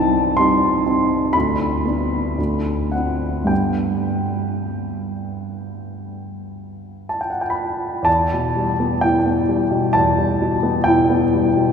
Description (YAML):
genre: classical, romantic nocturne for solo piano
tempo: 50-66 BPM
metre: 4/4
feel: rubato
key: G major, E minor from 8.1 s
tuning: A4 = 440 Hz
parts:
  - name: dark grand piano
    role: solo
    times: 0.0-11.7 s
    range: C2 to C6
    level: -17 LUFS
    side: equal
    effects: none
room: wet cathedral reverb, RT60 6.6 s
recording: heard from further back in the room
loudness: -17 LUFS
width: side -7 dB against mid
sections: 0.0-8.1 A section; 8.1-11.7 B section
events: none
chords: 0.0 Am7b5/C; 1.3 Bm/D; 2.4 D7; 3.5 G; 8.1 Em